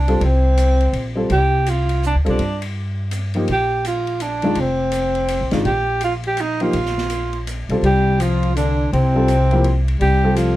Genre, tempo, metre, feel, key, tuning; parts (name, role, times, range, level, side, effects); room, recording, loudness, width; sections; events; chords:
modal jazz; 165 BPM; 3/4; swing 63% on 8ths; A4 = 441 Hz
breathy alto saxophone; melody; 0.0-10.6 s; C4 to G4; -20 LUFS; right 1 dB
upright bass; bass; 0.0-10.6 s; F1 to G2; -19 LUFS; equal
clear upright piano; accompaniment; 0.1-10.6 s; Eb3 to A4; -20 LUFS; left 1 dB
open jazz drum kit; drums; 0.1-10.5 s; hi-hat, ride cymbal, snare drum; -32 LUFS; left 2 dB
warm tenor saxophone; second line; 7.8-10.6 s; C3 to G3; -22 LUFS; left 2 dB
little or no reverb; dark, warm production; -16 LUFS; side -15 dB against mid
0.0-10.6 A section
0.0 C7sus4; 3.5 Bbsus2; 7.8 Csus4